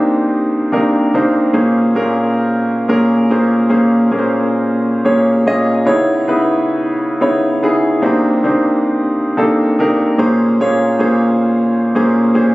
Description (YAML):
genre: amapiano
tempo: 111 BPM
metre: 4/4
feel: swing 55% on 16ths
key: unclear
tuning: A4 = 439 Hz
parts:
  - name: warm concert grand piano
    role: solo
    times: 0.0-12.5 s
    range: Bb2 to Eb5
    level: -12 LUFS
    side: equal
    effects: ping-pong delay
room: light reverb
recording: recorded on a phone in the room, studio reverb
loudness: -12 LUFS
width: side -19 dB against mid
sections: 0.0-10.2 A section; 10.2-12.5 B section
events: drop 10.2-12.5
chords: 0.0 Cm7; 1.5 Bbm7; 5.9 Dbm7; 8.0 Cm7; 10.2 Bbm7